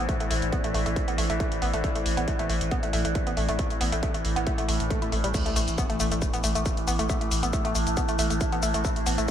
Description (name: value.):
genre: driving peak-time techno.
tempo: 137 BPM.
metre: 4/4.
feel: straight.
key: A minor.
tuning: A4 = 440 Hz.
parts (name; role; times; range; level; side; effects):
saturated sub bass; bass; 0.0-9.3 s; A1; -31 LUFS; equal; overdrive, sidechain pumping, low-pass filter.
overtone-sweeping drone; drone; 0.0-9.3 s; A2 to E3; -33 LUFS; left 2 dB; chorus, built-in reverb, sidechain pumping.
deep dark ambient pad; texture; 0.0-9.3 s; E4 to A5; -34 LUFS; right 1 dB; chorus, built-in reverb, sidechain pumping.
woody wave-folded pluck; riff; 0.1-9.3 s; G3 to E4; -30 LUFS; equal; chorus, overdrive, sidechain pumping, digital delay.
electronic kick drum; drums; 0.1-9.3 s; none; -29 LUFS; equal; distortion.
techno drum kit; drums; 0.1-9.3 s; crash cymbal, hi-hat, shaker; -33 LUFS; left 2 dB; none.
swell and sub drop; sound effects; 4.7-7.1 s; none; -37 LUFS; equal; none.
room: moderate lush hall reverb, RT60 1.9 s.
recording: bright 1980s-style digital production.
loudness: -24 LUFS.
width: side -10 dB against mid.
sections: 0.0-5.3 A section; 5.3-9.3 B section.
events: swell 4.7-5.3; drop 5.3-9.3; impact 5.3-7.1.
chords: 0.0 Am.